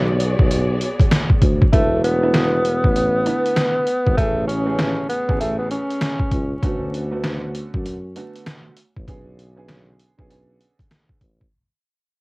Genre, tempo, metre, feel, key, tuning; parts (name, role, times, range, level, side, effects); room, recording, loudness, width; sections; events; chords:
hip hop, boom-bap hip-hop; 98 BPM; 4/4; swing 61% on 16ths; B dorian; A4 = 441 Hz
warm studio string section; sustained chords; 0.0-1.7 s; B3 to D5; -26 LUFS; equal; high-pass filter, low-pass filter, cassette tape
mellow tuba; bass; 0.0-11.4 s; E1 to F#2; -23 LUFS; equal
trip hop sampler-style drum kit; drums; 0.2-11.5 s; hi-hat, kick drum, snare drum; -19 LUFS; equal; cassette tape
breathy tenor saxophone; melody; 1.7-6.6 s; A3 to C#4; -21 LUFS; equal; high-pass filter, low-pass filter, cassette tape, tape echo
warm upright piano; accompaniment; 1.7-11.2 s; C#3 to G#4; -28 LUFS; right 3 dB; high-pass filter, low-pass filter, cassette tape
light reverb; home recording on cassette, vinyl crackle; -17 LUFS; side -26 dB against mid
0.0-1.7 A section; 1.7-11.5 B section
break 0.0-1.7; fade-out 1.7-11.5
0.0 Bm69; 1.7 E7sus4; 4.2 Amaj9; 6.6 D6; 9.1 Bm69